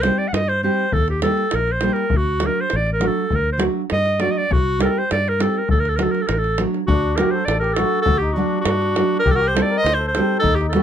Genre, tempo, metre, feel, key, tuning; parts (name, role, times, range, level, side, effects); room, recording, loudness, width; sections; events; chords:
balkan folk, Balkan wedding band; 101 BPM; 2/4; swing 54% on 16ths; D phrygian dominant; A4 = 440 Hz
bright clarinet; melody; 0.0-10.8 s; F#4 to F#5; -20 LUFS; right 1 dB
nylon-string guitar; accompaniment; 0.0-10.8 s; F#3 to G4; -22 LUFS; right 1 dB
fingered electric bass; bass; 0.0-10.8 s; A1 to G2; -23 LUFS; equal
davul; percussion; 0.0-10.8 s; -23 LUFS; equal
mellow accordion; second line; 6.9-10.8 s; D4 to C5; -26 LUFS; left 5 dB
light reverb; close, detailed microphones; -17 LUFS; side -9 dB against mid
0.0-6.9 A section; 6.9-10.8 A section
0.0 Cm; 0.9 Eb; 2.1 D; 4.5 Cm; 5.7 D; 9.3 Cm